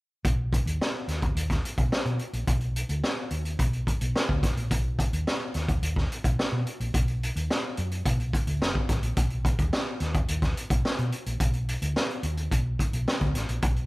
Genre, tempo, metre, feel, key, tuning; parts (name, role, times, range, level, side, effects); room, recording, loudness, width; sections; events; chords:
funk; 108 BPM; 4/4; straight; A4 = 436 Hz
hollow-body short-scale fingered electric bass; bass; 0.2-13.9 s; F#1 to B2; -28 LUFS; equal
raw garage drum kit; drums; 0.2-13.9 s; hi-hat, kick drum, snare drum; -27 LUFS; equal
light reverb; -25 LUFS; side -22 dB against mid
0.2-9.2 A section; 9.2-13.9 B section